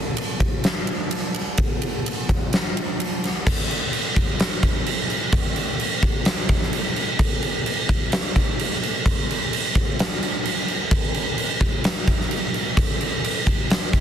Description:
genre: rock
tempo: 129 BPM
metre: 4/4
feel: straight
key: none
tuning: none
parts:
  - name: huge arena drum kit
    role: drums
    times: 0.2-14.0 s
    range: crash cymbal, kick drum, ride cymbal, snare drum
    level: -20 LUFS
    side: equal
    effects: soft clipping on kick, soft clipping on snare
room: little or no reverb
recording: dense, heavily limited modern master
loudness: -20 LUFS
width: side -9 dB against mid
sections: 0.0-3.5 A section; 3.5-14.0 B section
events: none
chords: none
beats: 0.16 0.63 1.10 | 1.57 2.05 2.52 2.99 | 3.46 3.93 4.39 4.86 | 5.33 5.80 6.26 6.73 | 7.19 7.66 8.12 8.59 | 9.05 9.52 9.98 10.45 | 10.91 11.38 11.84 12.30 | 12.77 13.23 13.69

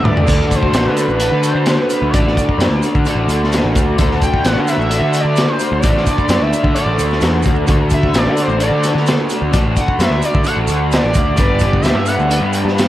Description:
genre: psychedelic rock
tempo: 130 BPM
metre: 4/4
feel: straight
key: D major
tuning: A4 = 442 Hz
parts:
  - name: overdriven synth lead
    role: melody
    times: 0.0-12.3 s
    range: B4 to G5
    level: -20 LUFS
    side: right 1 dB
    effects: distortion, analog delay
  - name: overdriven combo organ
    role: sustained chords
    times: 0.0-12.9 s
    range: A3 to A4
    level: -26 LUFS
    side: right 3 dB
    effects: none
  - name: raw garage guitar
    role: riff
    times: 0.0-12.9 s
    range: D3 to B4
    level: -19 LUFS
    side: left 2 dB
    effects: overdrive, flanger, analog delay
  - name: fuzz picked electric bass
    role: bass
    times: 0.0-12.9 s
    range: G1 to D3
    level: -18 LUFS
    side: equal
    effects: overdrive
  - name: crunchy breakbeat drum kit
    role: drums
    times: 0.1-12.9 s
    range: hi-hat, kick drum, snare drum, splash cymbal, toms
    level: -17 LUFS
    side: equal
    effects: none
  - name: maracas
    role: percussion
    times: 0.3-12.9 s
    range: none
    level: -33 LUFS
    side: right 10 dB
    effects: analog delay
room: light reverb, small room ambience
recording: echo-heavy mix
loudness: -12 LUFS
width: side -14 dB against mid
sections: 0.0-12.9 A section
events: drum fill 0.0; analog synth lead solo 0.0-12.9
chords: 0.3 D; 11.4 G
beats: | 0.27 0.74 1.20 1.66 | 2.13 2.59 3.05 3.52 | 3.98 4.44 4.91 5.37 | 5.83 6.29 6.76 7.22 | 7.68 8.14 8.61 9.07 | 9.53 9.99 10.46 10.92 | 11.38 11.85 12.31 12.77

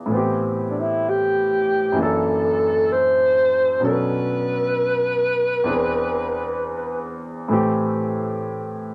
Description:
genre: jazz ballad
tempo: 65 BPM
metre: 4/4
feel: swing 69% on 8ths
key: A minor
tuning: A4 = 439 Hz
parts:
  - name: clear baby grand piano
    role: accompaniment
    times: 0.0-8.9 s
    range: E2 to A4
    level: -26 LUFS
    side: equal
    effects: none
  - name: breathy alto saxophone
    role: melody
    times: 0.7-7.2 s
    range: D4 to C5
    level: -22 LUFS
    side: equal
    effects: none
room: moderate studio ambience, RT60 0.5 s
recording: none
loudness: -21 LUFS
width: mono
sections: 0.0-8.9 A section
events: none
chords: 0.1 Am9; 2.0 F#7alt; 3.8 Bm9; 5.7 E7b13; 7.5 Am7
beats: | 0.11 1.04 1.97 2.90 | 3.82 4.75 5.67 6.59 | 7.51 8.44

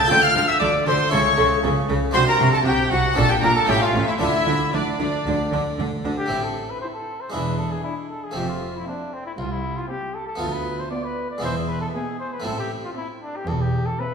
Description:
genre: classical, baroque-style concerto movement with solo episodes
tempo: 117 BPM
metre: 4/4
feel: straight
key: D minor, A minor from 6.3 s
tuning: A4 = 440 Hz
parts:
  - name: warm chamber violin section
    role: melody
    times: 0.0-14.1 s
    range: D5 to G6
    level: -25 LUFS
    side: left 2 dB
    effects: none
  - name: warm trumpet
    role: melody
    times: 0.0-14.1 s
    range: C4 to G5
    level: -24 LUFS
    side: left 1 dB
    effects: none
  - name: dark studio violin section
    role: second line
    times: 0.0-14.1 s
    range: D5 to A6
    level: -26 LUFS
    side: equal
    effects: none
  - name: harpsichord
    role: accompaniment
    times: 0.0-14.1 s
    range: C2 to A4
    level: -28 LUFS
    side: equal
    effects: none
  - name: warm chamber viola section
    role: accompaniment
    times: 0.1-14.1 s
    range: B3 to A4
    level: -28 LUFS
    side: right 1 dB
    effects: none
  - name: rich chamber double bass section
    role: bass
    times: 0.1-13.9 s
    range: E1 to D2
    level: -27 LUFS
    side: right 2 dB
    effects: none
  - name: warm chamber cello section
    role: bass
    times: 0.1-13.9 s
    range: C2 to D3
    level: -28 LUFS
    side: right 2 dB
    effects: none
room: wet recital hall reverb, RT60 1.6 s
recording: recorded in a church or concert hall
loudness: -19 LUFS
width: side -6 dB against mid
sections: 0.0-6.3 A section; 6.3-14.1 B section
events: none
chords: 0.1 Dm; 1.1 A/C#; 2.1 D7/C; 3.2 Gm/Bb; 3.7 A; 4.2 Dm; 6.3 Am; 7.3 E7; 8.4 F; 10.4 Bm7b5/D; 11.4 E; 12.5 Am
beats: | 0.10 0.61 1.12 1.63 | 2.15 2.66 3.17 3.69 | 4.21 4.74 5.26 5.79 | 6.31 6.82 7.33 7.85 | 8.36 8.87 9.38 9.90 | 10.41 10.92 11.43 11.94 | 12.45 12.96 13.47 13.98

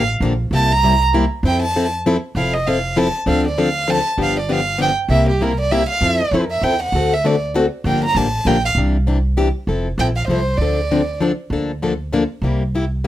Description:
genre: acoustic string swing (jazz manouche)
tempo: 197 BPM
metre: 3/4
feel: swing 59% on 8ths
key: F major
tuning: A4 = 439 Hz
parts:
  - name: warm violin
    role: melody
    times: 0.0-11.2 s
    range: G4 to Bb5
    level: -19 LUFS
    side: right 3 dB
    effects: none
  - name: picked plugged-in steel-string acoustic guitar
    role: accompaniment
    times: 0.0-13.1 s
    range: C3 to A4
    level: -19 LUFS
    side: left 3 dB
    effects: none
  - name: upright bass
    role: bass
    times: 0.0-13.1 s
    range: F1 to F2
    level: -20 LUFS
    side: right 1 dB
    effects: none
room: light reverb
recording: none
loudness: -15 LUFS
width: side -13 dB against mid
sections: 0.0-2.4 A section; 2.4-9.7 A section; 9.7-13.1 B section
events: violin solo 0.0-9.7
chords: 0.0 Gm7; 0.5 C7; 1.4 Fmaj7; 3.3 Dm7; 4.2 G7; 5.1 C7; 6.0 Fmaj7; 6.9 D7; 7.8 Gm7; 8.8 Cadd9; 9.7 Fmaj7; 10.6 Dm7; 11.5 Bbmaj7/D; 12.4 C7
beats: 0.21 | 0.52 0.83 1.13 | 1.44 1.74 2.05 | 2.35 2.66 2.96 | 3.27 3.58 3.88 | 4.19 4.49 4.80 | 5.10 5.41 5.71 | 6.02 6.32 6.63 | 6.93 7.24 7.54 | 7.84 8.15 8.46 | 8.76 9.06 9.37 | 9.67 9.98 10.28 | 10.59 10.89 11.20 | 11.50 11.81 12.11 | 12.42 12.72 13.03

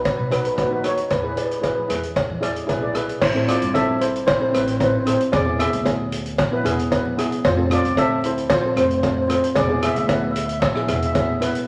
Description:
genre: calypso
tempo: 114 BPM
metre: 4/4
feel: straight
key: unclear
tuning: A4 = 442 Hz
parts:
  - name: steel pan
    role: melody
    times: 0.0-11.3 s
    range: E4 to E5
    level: -25 LUFS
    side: equal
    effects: none
  - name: steel pan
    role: accompaniment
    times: 0.0-11.7 s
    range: B3 to D5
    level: -26 LUFS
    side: equal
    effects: none
  - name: upright bass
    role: bass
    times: 0.0-11.5 s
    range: E1 to E3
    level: -30 LUFS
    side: equal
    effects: none
  - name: street-band drum kit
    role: drums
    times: 0.1-11.7 s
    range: crash cymbal, hi-hat, kick drum, rim click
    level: -29 LUFS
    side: equal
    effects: none
  - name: cowbell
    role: percussion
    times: 0.1-11.3 s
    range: none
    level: -27 LUFS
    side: equal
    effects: none
room: wet large studio reverb, RT60 1.2 s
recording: vinyl crackle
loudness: -21 LUFS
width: mono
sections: 0.0-3.2 A section; 3.2-11.7 B section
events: none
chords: 0.0 B; 1.1 E; 3.2 Am; 5.3 E; 7.4 F; 9.6 E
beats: 0.05 0.58 | 1.11 1.64 2.16 2.69 | 3.22 3.75 4.27 4.80 | 5.33 5.86 6.39 6.92 | 7.45 7.97 8.51 9.03 | 9.56 10.09 10.62 11.15

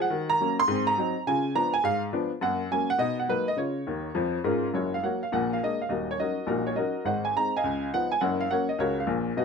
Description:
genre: jazz, stride piano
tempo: 207 BPM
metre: 4/4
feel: swing 66% on 8ths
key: F# major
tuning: A4 = 440 Hz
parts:
  - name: clear upright piano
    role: solo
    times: 0.0-9.4 s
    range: D#1 to B#5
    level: -24 LUFS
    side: equal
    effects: none
room: moderate studio reverb, RT60 0.8 s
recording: minimal, uncompressed stereo recording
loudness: -24 LUFS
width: side -5 dB against mid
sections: 0.0-4.7 A section; 4.7-9.4 B section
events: upright piano fill 3.9-4.7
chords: 0.1 D#m7; 0.7 G#7; 1.3 C#7b9; 2.4 F#; 3.0 Bmaj7; 3.6 C#; 4.7 F#; 5.3 A#7; 5.9 D#m7; 7.1 G#; 7.6 C#9; 8.2 F#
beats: | 0.10 0.39 0.68 0.97 | 1.26 1.55 1.84 2.13 | 2.42 2.71 3.00 3.29 | 3.58 3.87 4.16 4.45 | 4.74 5.03 5.32 5.61 | 5.89 6.18 6.47 6.76 | 7.05 7.34 7.63 7.92 | 8.21 8.50 8.79 9.07 | 9.36

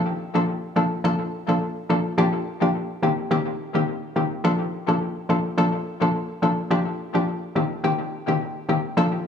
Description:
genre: afrobeats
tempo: 106 BPM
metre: 4/4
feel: swing 55% on 16ths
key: Bb major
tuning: A4 = 439 Hz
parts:
  - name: hollow square pluck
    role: solo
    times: 0.0-9.1 s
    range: Eb3 to A4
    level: -21 LUFS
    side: left 1 dB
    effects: chorus, analog delay
room: light reverb, digital ambience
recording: echo-heavy mix, small room ambience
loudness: -21 LUFS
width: side -7 dB against mid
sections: 0.0-9.3 A section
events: none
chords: 0.0 Bbmaj7; 2.2 Gm7; 3.0 Cm7; 4.4 Bbmaj7; 6.7 Gm7; 7.6 Cm7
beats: 0.48 1.05 1.61 | 2.18 2.75 3.31 3.88 | 4.45 5.01 5.58 6.14 | 6.71 7.28 7.84 8.41 | 8.97

